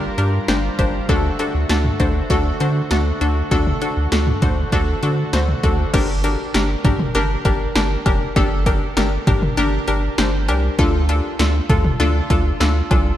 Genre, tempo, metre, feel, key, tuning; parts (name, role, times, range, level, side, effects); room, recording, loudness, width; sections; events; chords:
synth-pop; 99 BPM; 4/4; straight; G minor; A4 = 439 Hz
analog pluck; accompaniment; 0.0-13.1 s; D4 to C5; -21 LUFS; left 2 dB; chorus, analog delay
pipe organ, cornet; sustained chords; 0.0-5.9 s; D3 to Bb4; -28 LUFS; right 1 dB
round analog bass; bass; 0.0-13.1 s; F1 to D3; -20 LUFS; equal
punchy analog drum machine; drums; 0.2-13.1 s; cowbell, crash cymbal, hi-hat, kick drum, snare drum, toms; -20 LUFS; equal; overdrive, analog delay
moderate church reverb, RT60 3.3 s; echo-heavy mix; -16 LUFS; side -12 dB against mid
0.0-5.9 A section; 5.9-13.2 B section
0.0 Gm7; 1.1 D; 5.9 Gm; 10.8 Dm